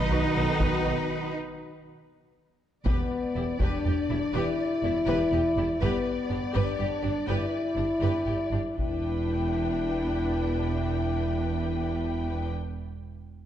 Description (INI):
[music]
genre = cinematic, epic orchestral film score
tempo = 81 BPM (dotted quarters)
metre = 6/8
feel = straight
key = E minor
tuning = A4 = 441 Hz
[part]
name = dark symphonic violin section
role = melody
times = 0.0-12.5 s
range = B4 to G5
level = -38 LUFS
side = left 5 dB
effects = none
[part]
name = rich symphonic violin section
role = second line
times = 0.0-12.5 s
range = D4 to D#5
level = -38 LUFS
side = left 4 dB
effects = none
[part]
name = clear symphonic viola section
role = accompaniment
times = 0.0-12.5 s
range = D4 to B4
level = -38 LUFS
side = equal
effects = none
[part]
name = clear symphonic string section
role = sustained chords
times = 0.0-1.4 s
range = B3 to F#5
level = -39 LUFS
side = left 2 dB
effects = none
[part]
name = clear trombone section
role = sustained chords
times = 0.0-1.3 s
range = D#3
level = -33 LUFS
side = right 4 dB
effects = none
[part]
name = warm French horn section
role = sustained chords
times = 0.0-12.5 s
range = B3 to F#4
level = -29 LUFS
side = left 2 dB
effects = none
[part]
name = rich symphonic cello section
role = bass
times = 0.0-12.5 s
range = E2 to D#4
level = -34 LUFS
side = right 2 dB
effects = none
[part]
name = timpani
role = percussion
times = 0.0-0.6 s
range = B2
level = -37 LUFS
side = left 1 dB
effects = none
[part]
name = mellow tuba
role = bass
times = 0.1-0.9 s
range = B1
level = -35 LUFS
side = right 3 dB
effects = none
[part]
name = rich symphonic double bass section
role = bass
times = 0.1-12.5 s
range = E1 to B1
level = -32 LUFS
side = right 3 dB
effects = none
[part]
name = taiko ensemble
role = drums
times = 0.6-9.7 s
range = none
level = -31 LUFS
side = equal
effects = none
[sound]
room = wet scoring stage reverb, RT60 1.9 s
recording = dark, warm production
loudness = -25 LUFS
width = side -10 dB against mid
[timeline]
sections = 0.0-2.9 A section; 2.9-8.8 B section; 8.8-11.7 C section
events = break 1.3-2.9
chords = 0.0 B; 2.9 Em7; 5.8 G; 8.8 Em7